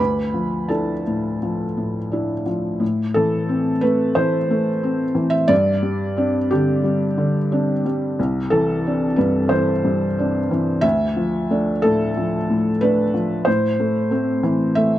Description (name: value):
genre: neoclassical minimalist piano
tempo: 90 BPM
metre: 4/4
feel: rubato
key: A minor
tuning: A4 = 440 Hz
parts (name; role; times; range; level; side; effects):
- felt-muted upright piano; solo; 0.0-15.0 s; C2 to B5; -17 LUFS; equal; none
room: little or no reverb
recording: recorded outdoors, with no room sound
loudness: -17 LUFS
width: side -13 dB against mid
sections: 0.0-2.8 A section; 2.8-15.0 B section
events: none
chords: 0.0 Dmadd9; 2.8 Am; 5.5 Gsus4; 8.2 Cadd9; 10.8 Dmadd9; 13.5 Am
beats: 0.70 1.41 2.11 | 2.81 3.48 4.15 4.83 | 5.50 6.18 6.85 7.51 | 8.18 8.84 9.51 10.17 | 10.84 11.50 12.16 12.81 | 13.47 14.12 14.78